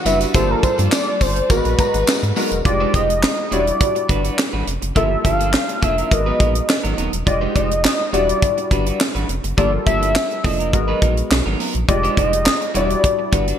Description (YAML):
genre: early-eighties boogie funk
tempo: 104 BPM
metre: 4/4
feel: straight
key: unclear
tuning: A4 = 436 Hz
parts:
  - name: fat analog lead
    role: melody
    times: 0.0-13.6 s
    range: Bb4 to F5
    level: -21 LUFS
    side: equal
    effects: chorus
  - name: warm studio string section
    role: sustained chords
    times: 0.0-2.6 s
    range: E3 to D5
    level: -29 LUFS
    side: equal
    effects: none
  - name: warm baby grand piano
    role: accompaniment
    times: 0.1-13.6 s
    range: G3 to Bb5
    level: -24 LUFS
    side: left 3 dB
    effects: analog chorus
  - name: electric guitar at the edge of break-up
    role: riff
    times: 0.1-13.6 s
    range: F3 to C5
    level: -26 LUFS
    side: right 3 dB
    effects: wide subtle chorus
  - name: sub bass with octave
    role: bass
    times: 0.1-13.5 s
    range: Eb1 to Ab2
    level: -22 LUFS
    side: equal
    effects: none
  - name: tight funk drum kit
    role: drums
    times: 0.1-13.6 s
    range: handclaps, hi-hat, kick drum, snare drum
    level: -20 LUFS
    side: equal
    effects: gated reverb
  - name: tambourine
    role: percussion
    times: 0.1-2.6 s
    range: none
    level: -31 LUFS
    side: left 7 dB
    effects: none
room: light reverb, studio reverb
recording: bright 1980s-style digital production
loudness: -15 LUFS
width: side -9 dB against mid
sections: 0.0-2.7 A section; 2.7-13.6 B section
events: none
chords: 0.3 Gm9; 1.5 Abm9; 2.7 Fm9; 3.5 Em9; 5.0 Gm9; 6.1 Abm9; 7.3 Fm9; 8.1 Em9; 9.6 Gm9; 10.7 Abm9; 11.9 Fm9; 12.7 Em9